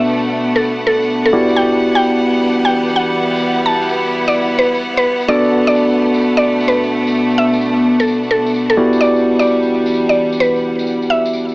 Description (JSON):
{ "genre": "UK garage, two-step garage", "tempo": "129 BPM", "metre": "4/4", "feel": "swing 67% on 16ths", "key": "E minor", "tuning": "A4 = 440 Hz", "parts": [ { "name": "mallet-like synth pluck", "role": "melody", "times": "0.0-11.3 s", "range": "A4 to A5", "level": "-16 LUFS", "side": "equal", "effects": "chorus, cassette tape, tape echo" }, { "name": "rich studio violin section", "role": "sustained chords", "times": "0.0-11.5 s", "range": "G3 to F#5", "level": "-20 LUFS", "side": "equal", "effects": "low-pass filter" }, { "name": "barky tine electric piano", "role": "stabs", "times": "0.0-11.5 s", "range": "B3 to D5", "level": "-16 LUFS", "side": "equal", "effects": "low-pass filter" }, { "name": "deep dark ambient pad", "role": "texture", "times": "0.0-11.5 s", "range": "B3 to F#5", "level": "-22 LUFS", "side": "equal", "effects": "chorus, built-in reverb" }, { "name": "tambourine", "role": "drums", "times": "0.1-11.5 s", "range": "none", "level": "-35 LUFS", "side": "equal", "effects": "low-pass filter on perc, low-pass filter on room" } ], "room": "wet small room reverb, RT60 0.5 s", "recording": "small speaker sound", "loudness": "-12 LUFS", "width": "side -25 dB against mid", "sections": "0.0-11.5 A section", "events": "none", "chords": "0.0 Bm7; 1.3 Em9; 5.3 Bm7; 8.8 Em9" }